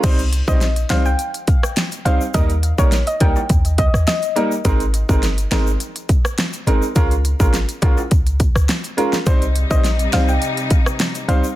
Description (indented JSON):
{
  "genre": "dancehall",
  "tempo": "104 BPM",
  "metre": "4/4",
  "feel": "straight",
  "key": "C phrygian",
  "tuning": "A4 = 443 Hz",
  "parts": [
    { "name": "clear concert grand piano", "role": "accompaniment", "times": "0.0-11.4 s", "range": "G3 to C5", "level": "-22 LUFS", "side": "right 1 dB", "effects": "sidechain pumping" },
    { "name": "clean 808-style bass", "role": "bass", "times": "0.0-11.4 s", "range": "G1 to Eb2", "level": "-18 LUFS", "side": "equal", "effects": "none" },
    { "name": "pop drum kit", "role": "drums", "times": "0.0-11.4 s", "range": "crash cymbal, hi-hat, kick drum, rim click, snare drum", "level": "-18 LUFS", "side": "equal", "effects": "none" },
    { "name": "egg shaker and timbales", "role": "percussion", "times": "0.0-11.6 s", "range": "none", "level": "-35 LUFS", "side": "left 6 dB", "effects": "none" },
    { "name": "soft round pluck", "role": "melody", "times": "0.5-4.5, 9.7-11.4 s", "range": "Db5 to G5", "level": "-24 LUFS", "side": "left 2 dB", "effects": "chorus, ping-pong delay" },
    { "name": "clear studio string section", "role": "sustained chords", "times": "9.3-11.6 s", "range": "C3 to Eb4", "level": "-25 LUFS", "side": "left 3 dB", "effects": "sidechain pumping" }
  ],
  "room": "small room reverb",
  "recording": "dense, heavily limited modern master",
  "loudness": "-15 LUFS",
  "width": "side -15 dB against mid",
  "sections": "0.0-11.6 A section",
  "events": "none",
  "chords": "0.0 Cm; 2.3 Eb; 4.7 Abadd9; 7.0 Db6; 9.3 Cm",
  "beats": "| 0.04 0.61 1.19 1.77 | 2.34 2.92 3.50 4.07 | 4.65 5.23 5.80 6.38 | 6.96 7.54 8.11 8.69 | 9.27 9.84 10.42 11.00"
}